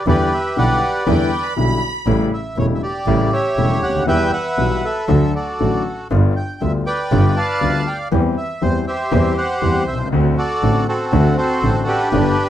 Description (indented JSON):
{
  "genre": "tango",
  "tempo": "120 BPM",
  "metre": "4/4",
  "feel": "rubato",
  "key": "unclear",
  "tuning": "A4 = 438 Hz",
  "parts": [
    { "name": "bandoneon", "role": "melody", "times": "0.0-12.5 s", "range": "C4 to A5", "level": "-20 LUFS", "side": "right 1 dB", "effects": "none" },
    { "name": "clear concert grand piano", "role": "accompaniment", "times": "0.1-12.3 s", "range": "E1 to G4", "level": "-19 LUFS", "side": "left 3 dB", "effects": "none" },
    { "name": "clear double bass", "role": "bass", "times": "0.1-12.3 s", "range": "E1 to E2", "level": "-20 LUFS", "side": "right 2 dB", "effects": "none" },
    { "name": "rich studio violin section", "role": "second line", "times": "1.1-2.2 s", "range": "G5 to B5", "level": "-25 LUFS", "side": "right 3 dB", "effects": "none" }
  ],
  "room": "moderate studio ambience, RT60 0.5 s",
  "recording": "dark, warm production",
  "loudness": "-15 LUFS",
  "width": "side -11 dB against mid",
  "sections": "0.0-12.5 A section",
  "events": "none",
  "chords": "0.1 Em7; 2.1 A7; 4.1 Em; 5.1 D; 6.1 G7; 8.1 C/E; 10.1 D7",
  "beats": "| 0.07 0.57 1.07 1.57 | 2.07 2.57 3.07 3.57 | 4.07 4.58 5.09 5.60 | 6.11 6.62 7.12 7.62 | 8.12 8.62 9.12 9.62 | 10.12 10.62 11.12 11.62 | 12.13"
}